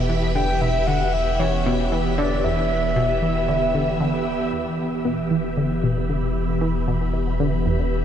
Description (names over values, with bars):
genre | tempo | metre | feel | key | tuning
ambient, sequencer-driven space music | 115 BPM | 4/4 | straight | E minor | A4 = 438 Hz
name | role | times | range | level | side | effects
phased string machine | sustained chords | 0.0-8.0 s | E3 to B5 | -24 LUFS | equal | ensemble chorus, phaser, shimmer reverb
warm sub bass | bass | 0.0-8.0 s | E1 | -26 LUFS | equal | none
analog pluck | riff | 0.1-7.8 s | E2 to E3 | -25 LUFS | equal | chorus, phaser, shimmer reverb, ping-pong delay
soft octave-layered synth lead | melody | 0.4-4.3 s | C#5 to G5 | -26 LUFS | equal | chorus, cassette tape, shimmer reverb, ping-pong delay
room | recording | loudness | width
wet huge ambient reverb, RT60 7.8 s | cassette tape | -19 LUFS | side -9 dB against mid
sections
0.0-4.5 A section; 4.5-8.0 B section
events
filter sweep on synth arpeggio sound 4.5-8.0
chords
0.0 Em